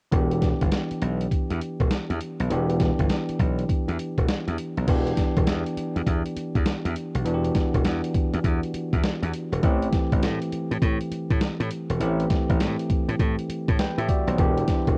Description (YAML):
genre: R&B, new jack swing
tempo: 101 BPM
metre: 4/4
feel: swing 64% on 16ths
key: E minor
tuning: A4 = 440 Hz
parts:
  - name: barky tine electric piano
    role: accompaniment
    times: 0.1-15.0 s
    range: E3 to G5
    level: -30 LUFS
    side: equal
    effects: cassette tape
  - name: slap bass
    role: bass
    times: 0.1-15.0 s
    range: E1 to A2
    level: -28 LUFS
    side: equal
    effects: none
  - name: dusty soul sampler-style drum kit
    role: drums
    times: 0.1-15.0 s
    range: crash cymbal, hi-hat, kick drum, snare drum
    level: -27 LUFS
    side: equal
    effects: cassette tape
room: little or no reverb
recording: home recording on cassette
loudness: -25 LUFS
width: mono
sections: 0.1-4.9 A section; 4.9-15.0 B section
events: none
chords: 0.1 Em7; 9.6 Am7; 14.4 Em7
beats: | 0.13 0.72 1.31 1.91 | 2.50 3.10 3.69 4.29 | 4.88 5.47 6.07 6.66 | 7.25 7.85 8.44 9.04 | 9.63 10.22 10.82 11.41 | 12.01 12.60 13.20 13.79 | 14.38